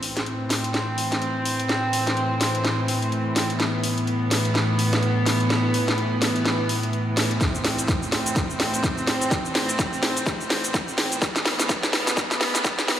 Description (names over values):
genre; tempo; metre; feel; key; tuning
bass house; 126 BPM; 4/4; swing 59% on 16ths; A minor; A4 = 440 Hz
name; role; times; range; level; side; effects
warm studio string section; sustained chords; 0.0-13.0 s; A2 to C4; -24 LUFS; equal; sidechain pumping
house drum kit; drums; 0.0-13.0 s; hi-hat, shaker, snare drum; -24 LUFS; equal; overdrive, high-pass filter on hats, studio reverb, high-pass filter on snare, high-pass filter on perc
electronic kick drum; drums; 7.4-12.8 s; none; -26 LUFS; equal; overdrive, studio reverb
room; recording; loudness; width
wet lush hall reverb, RT60 1.9 s; played on a big sound system in a bare room, large studio reverb, high-pass filter; -20 LUFS; side -11 dB against mid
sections
0.0-13.0 A section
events
build-up 0.0-13.0; drum fill 0.0-13.0; filter sweep 0.0-13.0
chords
0.0 Am